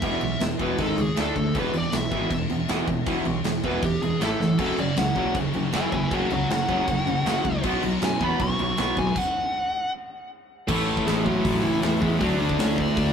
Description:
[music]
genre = punk rock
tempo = 158 BPM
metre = 4/4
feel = straight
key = unclear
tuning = A4 = 440 Hz
[part]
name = high-gain lead guitar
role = melody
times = 0.0-13.1 s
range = E3 to C#6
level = -28 LUFS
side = equal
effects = distortion, tape echo
[part]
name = distorted electric guitar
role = riff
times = 0.0-13.1 s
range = E2 to D4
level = -27 LUFS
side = right 4 dB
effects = distortion
[part]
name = overdriven semi-hollow guitar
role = riff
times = 0.0-13.1 s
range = E2 to D4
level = -29 LUFS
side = left 7 dB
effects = none
[part]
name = growling picked electric bass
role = bass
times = 0.0-13.1 s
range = E1 to F#2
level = -31 LUFS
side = left 1 dB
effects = overdrive
[part]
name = big rock drum kit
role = drums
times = 0.0-13.1 s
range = crash cymbal, hi-hat, kick drum, snare drum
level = -29 LUFS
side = equal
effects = none
[part]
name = high-gain distorted guitar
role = riff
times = 4.6-13.1 s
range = F#2 to F#4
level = -32 LUFS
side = left 1 dB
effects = distortion
[sound]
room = moderate studio reverb, RT60 0.6 s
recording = rough rehearsal-room recording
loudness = -22 LUFS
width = side -7 dB against mid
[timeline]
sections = 0.0-10.7 A section; 10.7-13.1 B section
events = lead electric guitar solo 0.0-10.7; drum fill 4.4; stop 9.2-10.7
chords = 0.0 E5; 0.8 G#5; 1.2 D5; 1.5 E5; 4.2 A5; 4.6 F#; 7.6 B; 10.7 A; 12.2 D

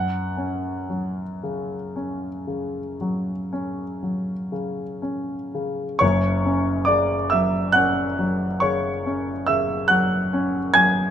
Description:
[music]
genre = classical, romantic nocturne for solo piano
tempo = 38-48 BPM (dotted quarters)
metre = 12/8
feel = rubato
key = unclear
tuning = A4 = 441 Hz
[part]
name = warm grand piano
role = solo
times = 0.0-11.1 s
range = F#1 to G#6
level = -21 LUFS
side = equal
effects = none
[sound]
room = moderate large studio reverb, RT60 0.9 s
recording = minimal, uncompressed stereo recording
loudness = -21 LUFS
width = side -9 dB against mid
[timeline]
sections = 0.0-6.0 A section; 6.0-11.1 A section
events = none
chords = 0.0 F#5

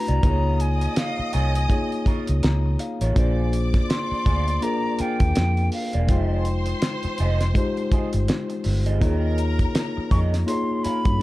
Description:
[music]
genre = lush 1970s-style soul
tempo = 82 BPM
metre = 4/4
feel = swing 58% on 16ths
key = unclear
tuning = A4 = 440 Hz
[part]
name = hollow concert flute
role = melody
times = 0.0-11.2 s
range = F5 to Db6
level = -29 LUFS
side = left 1 dB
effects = none
[part]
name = mellow tine electric piano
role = accompaniment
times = 0.0-11.2 s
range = Ab3 to Bb5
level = -27 LUFS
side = left 2 dB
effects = none
[part]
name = electric guitar through a small old amp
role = riff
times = 0.1-11.1 s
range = Bb3 to F5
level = -34 LUFS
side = right 4 dB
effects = wah
[part]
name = vintage muted fingered electric bass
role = bass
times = 0.1-11.2 s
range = E1 to G2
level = -22 LUFS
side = equal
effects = none
[part]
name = cloth-damped thuddy drum kit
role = drums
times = 0.1-11.2 s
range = hi-hat, kick drum, snare drum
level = -23 LUFS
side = equal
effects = none
[part]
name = clear studio string section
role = second line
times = 0.2-10.8 s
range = Bb4 to Eb6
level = -34 LUFS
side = left 1 dB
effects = tape echo
[sound]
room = studio reverb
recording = dark, warm production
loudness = -20 LUFS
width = side -17 dB against mid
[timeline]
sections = 0.0-11.2 A section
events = tine electric piano fill 2.1-3.2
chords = 0.2 Db6; 3.2 Bb7; 6.1 Fm7; 9.0 Eb7sus4

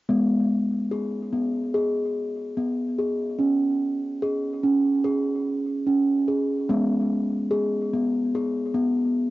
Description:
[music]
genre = world meditative, meditative tuned percussion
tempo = 73 BPM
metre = 4/4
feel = swing 54% on 16ths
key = G# minor pentatonic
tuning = A4 = 440 Hz
[part]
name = steel tongue drum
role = solo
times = 0.1-9.3 s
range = G#3 to G#4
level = -22 LUFS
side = equal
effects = cassette tape, analog delay
[sound]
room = wet booth ambience, RT60 0.2 s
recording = home recording on cassette, nothing above 7.5 kHz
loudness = -22 LUFS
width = side -17 dB against mid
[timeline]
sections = 0.1-6.7 A section; 6.7-9.3 B section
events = none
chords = 0.1 G#m; 3.4 C#5; 6.7 G#m

